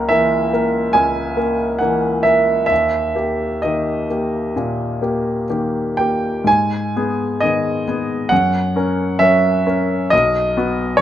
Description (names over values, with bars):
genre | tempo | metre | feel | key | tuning
classical, romantic nocturne for solo piano | 61-72 BPM | 4/4 | rubato | unclear | A4 = 440 Hz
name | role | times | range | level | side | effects
clear grand piano | solo | 0.0-11.0 s | B1 to A#5 | -15 LUFS | equal | none
room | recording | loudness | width
moderate recital hall reverb, RT60 1.7 s | close, detailed microphones | -15 LUFS | side -11 dB against mid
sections
0.0-11.0 A section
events
none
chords
0.0 A#dim/C#; 2.7 D#; 6.5 G#m; 8.3 F#; 10.1 B